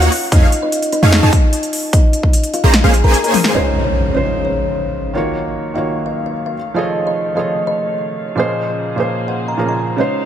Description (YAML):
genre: future bass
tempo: 149 BPM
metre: 4/4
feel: half-time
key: unclear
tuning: A4 = 438 Hz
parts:
  - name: kalimba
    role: melody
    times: 0.0-10.2 s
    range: Eb4 to Bb5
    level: -20 LUFS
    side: left 2 dB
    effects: sidechain pumping, ping-pong delay
  - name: airy dreamy lead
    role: arpeggios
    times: 0.0-3.5 s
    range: F5 to Bb5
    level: -26 LUFS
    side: right 1 dB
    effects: chorus, sidechain pumping, ping-pong delay
  - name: supersaw chords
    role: riff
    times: 0.0-3.5 s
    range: A3 to Bb5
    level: -19 LUFS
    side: right 1 dB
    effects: ensemble chorus, sidechain pumping, low-pass filter, ping-pong delay
  - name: warm 808-style bass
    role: bass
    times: 0.0-3.1 s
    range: Bb1 to F2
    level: -12 LUFS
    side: equal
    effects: sidechain pumping
  - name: big-room dance drum kit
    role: drums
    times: 0.0-3.5 s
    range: hi-hat, snare drum, toms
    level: -19 LUFS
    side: left 1 dB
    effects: none
  - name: electronic kick drum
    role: drums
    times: 0.3-2.3 s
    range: none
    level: -11 LUFS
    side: equal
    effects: none
  - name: felt-muted upright piano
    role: accompaniment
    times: 3.5-10.3 s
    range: Bb2 to Eb5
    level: -20 LUFS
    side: right 3 dB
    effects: sidechain pumping, ping-pong delay
  - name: warm studio string section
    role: sustained chords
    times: 3.5-10.3 s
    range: Db3 to F5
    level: -28 LUFS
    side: left 1 dB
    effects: sidechain pumping, low-pass filter
  - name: impact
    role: sound effects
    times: 3.5-5.2 s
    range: none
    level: -21 LUFS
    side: equal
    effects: none
room: light reverb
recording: none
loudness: -13 LUFS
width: side -10 dB against mid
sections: 0.0-3.5 A section; 3.5-10.3 B section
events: drop 0.0-3.5; drum fill 3.3; impact 3.5-5.2; filter sweep on string section 3.5-10.3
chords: 0.1 F7alt; 1.9 Bbm9; 3.5 Dbmaj7; 5.2 Ebm9; 6.6 F7alt; 8.4 Bbm9